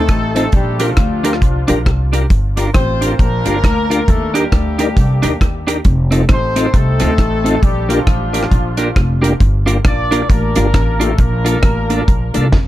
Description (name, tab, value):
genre	ska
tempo	135 BPM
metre	4/4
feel	swing 60% on 8ths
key	Bb major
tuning	A4 = 440 Hz
part	warm horn section	melody	0.0-12.5 s	F3 to D5	-20 LUFS	left 1 dB	tape echo
part	clean electric guitar	accompaniment	0.0-12.5 s	C4 to Bb4	-19 LUFS	right 3 dB	tremolo
part	upright bass	bass	0.0-12.7 s	F1 to F2	-17 LUFS	equal	none
part	deep reggae drum kit	drums	0.1-12.7 s	hi-hat, kick drum, rim click, snare drum	-15 LUFS	equal	none
part	tonewheel organ	stabs	0.3-12.6 s	Bb3 to Bb4	-22 LUFS	left 3 dB	chorus vibrato, slow rotary speaker, tape echo
room	light reverb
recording	none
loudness	-12 LUFS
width	side -14 dB against mid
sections	0.0-12.7 A section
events	drum fill 12.5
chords	0.0 F7; 0.5 Bb6; 2.3 Gm7; 4.1 Ebmaj7; 5.8 F7; 7.6 Bb6; 9.4 Gm7; 11.2 Bbmaj7